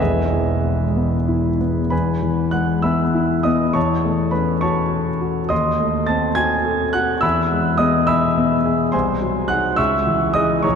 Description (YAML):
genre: classical, romantic character piece for solo piano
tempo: 62-72 BPM (dotted quarters)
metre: 6/8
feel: rubato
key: E major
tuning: A4 = 440 Hz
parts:
  - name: clear concert grand piano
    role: solo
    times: 0.0-10.8 s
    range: E1 to A6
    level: -16 LUFS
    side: left 1 dB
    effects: none
room: wet cathedral reverb, RT60 4.2 s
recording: dark, warm production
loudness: -16 LUFS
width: side -6 dB against mid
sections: 0.0-1.9 A section; 1.9-10.8 B section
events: none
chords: 0.0 E; 3.8 F#m7/E; 5.5 D#dim7; 7.2 E; 8.9 G#7/B#; 9.8 C#m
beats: 0.96 | 1.92 2.84 | 3.76 4.63 | 5.51 6.38 | 7.23 8.09 | 8.94 9.78 | 10.65